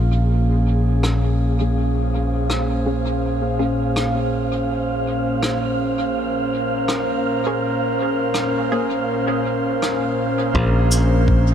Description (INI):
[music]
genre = ambient dub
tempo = 82 BPM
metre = 4/4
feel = swing 58% on 16ths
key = Bb minor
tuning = A4 = 440 Hz
[part]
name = airy breathy pad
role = sustained chords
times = 0.0-11.5 s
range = Bb2 to F5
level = -22 LUFS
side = equal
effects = chorus
[part]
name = modern bright fingered electric bass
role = bass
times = 0.0-11.5 s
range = Bb1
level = -21 LUFS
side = equal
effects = none
[part]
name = wind-like tuned noise texture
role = texture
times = 0.8-11.5 s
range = F5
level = -27 LUFS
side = right 3 dB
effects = built-in reverb
[part]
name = rim click and cabasa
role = drums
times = 1.0-11.1 s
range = none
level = -29 LUFS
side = equal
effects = dub echo
[part]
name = filtered dub chord stab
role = stabs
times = 1.6-8.9 s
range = Bb3 to Ab4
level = -30 LUFS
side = equal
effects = wide subtle chorus, cassette tape, dub echo
[part]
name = electronic kick drum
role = drums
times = 10.5-11.4 s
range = none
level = -21 LUFS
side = equal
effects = none
[sound]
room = light reverb, studio reverb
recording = none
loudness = -18 LUFS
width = side -9 dB against mid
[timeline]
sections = 0.0-10.5 A section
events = filter sweep on synth stab 0.0-10.5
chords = 0.0 Bbm7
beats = 0.30 1.03 | 1.76 2.50 3.23 3.96 | 4.69 5.42 6.15 6.89 | 7.62 8.35 9.08 9.81 | 10.54 11.28